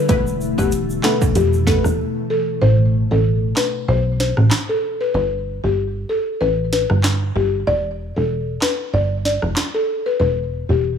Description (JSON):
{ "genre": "dancehall", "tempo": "95 BPM", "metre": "4/4", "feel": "swing 56% on 16ths", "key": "unclear", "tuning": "A4 = 440 Hz", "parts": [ { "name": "buzzing marimba with soft mallets", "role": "melody", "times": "0.0-10.8 s", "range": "G4 to D5", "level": "-21 LUFS", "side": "left 2 dB", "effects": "digital delay" }, { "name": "glassy FM pad", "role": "sustained chords", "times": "0.0-2.6 s", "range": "B2 to E4", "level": "-25 LUFS", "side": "left 2 dB", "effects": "ensemble chorus, built-in reverb, sidechain pumping" }, { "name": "punchy chord stab", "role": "accompaniment", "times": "0.1-1.8 s", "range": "A3 to B4", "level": "-24 LUFS", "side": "equal", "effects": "chorus, sidechain pumping" }, { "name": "plucky analog bass", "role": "bass", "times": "0.1-11.0 s", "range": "E1 to B1", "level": "-18 LUFS", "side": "equal", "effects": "none" }, { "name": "afro-pop drum kit", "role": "drums", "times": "0.1-9.7 s", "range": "handclaps, hi-hat, kick drum, rim click, snare drum", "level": "-22 LUFS", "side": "right 1 dB", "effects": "none" }, { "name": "egg shaker and timbales", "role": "percussion", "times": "0.1-2.0 s", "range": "none", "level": "-33 LUFS", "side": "right 5 dB", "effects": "none" } ], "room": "digital ambience", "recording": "studio ambience", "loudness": "-16 LUFS", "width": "side -8 dB against mid", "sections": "0.0-2.6 A section; 2.6-11.0 B section", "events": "break 2.0-2.6; kick muted 2.6-11.0", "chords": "0.1 Esus4; 2.6 Asus2; 5.1 Gsus2; 7.7 Em; 10.2 N.C.", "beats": "| 0.09 0.72 1.35 1.99 | 2.62 3.25 3.88 4.51 | 5.14 5.78 6.41 7.04 | 7.67 8.30 8.93 9.56 | 10.20 10.83" }